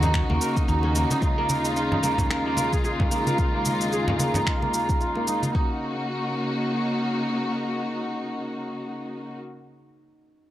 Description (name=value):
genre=organic downtempo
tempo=111 BPM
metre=4/4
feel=swing 57% on 16ths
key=Eb minor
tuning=A4 = 440 Hz
part: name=muted studio string section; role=sustained chords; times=0.0-9.4 s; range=Eb2 to Gb4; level=-26 LUFS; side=left 1 dB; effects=sidechain pumping, low-pass filter
part: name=kora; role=arpeggios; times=0.0-7.2 s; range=Bb3 to Eb5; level=-27 LUFS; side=right 2 dB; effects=low-pass filter, analog delay
part: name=woody fretless electric bass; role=bass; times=0.0-1.0 s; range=Eb2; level=-23 LUFS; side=equal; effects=transformer saturation, ensemble chorus, sidechain pumping
part: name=electronic shaker and finger snaps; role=drums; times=0.0-5.5 s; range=none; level=-31 LUFS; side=left 1 dB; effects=none
part: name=congas and bongos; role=percussion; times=0.0-5.5 s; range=none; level=-29 LUFS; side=right 1 dB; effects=none
part: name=bronze singing bowl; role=texture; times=0.0-5.6 s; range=Eb4 to Eb5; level=-47 LUFS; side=right 2 dB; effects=none
part: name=electronic kick drum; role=drums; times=0.1-5.7 s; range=none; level=-25 LUFS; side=equal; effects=none
room=small room ambience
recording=dry, gritty hardware recording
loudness=-22 LUFS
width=side -13 dB against mid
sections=0.0-5.5 A section; 5.5-9.9 B section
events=filter sweep on kora 0.0-5.5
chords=0.0 Ebm7; 1.2 Dbadd9/Eb; 5.5 Ebm7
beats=0.14 0.68 | 1.22 1.76 2.30 2.84 | 3.38 3.92 4.47 5.01 | 5.55 6.09 6.63 7.17 | 7.71 8.25 8.79 9.33